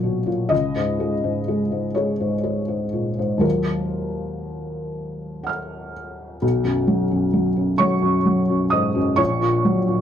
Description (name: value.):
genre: neoclassical minimalist piano.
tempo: 39-44 BPM (dotted quarters).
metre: 6/8.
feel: rubato.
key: unclear.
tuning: A4 = 440 Hz.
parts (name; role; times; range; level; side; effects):
felt-muted upright piano; solo; 0.0-10.0 s; Bb1 to F6; -19 LUFS; equal; none.
room: moderate studio reverb, RT60 0.6 s.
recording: dark, warm production.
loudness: -19 LUFS.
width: side -9 dB against mid.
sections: 0.0-6.4 A section; 6.4-10.0 A section.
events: none.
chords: 0.0 Gb/Bb; 0.5 Db5; 3.4 Ebmadd9; 6.4 B; 9.2 Gb/Bb.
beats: | 0.51 1.95 | 3.44 4.94 | 6.42 7.80 | 9.19.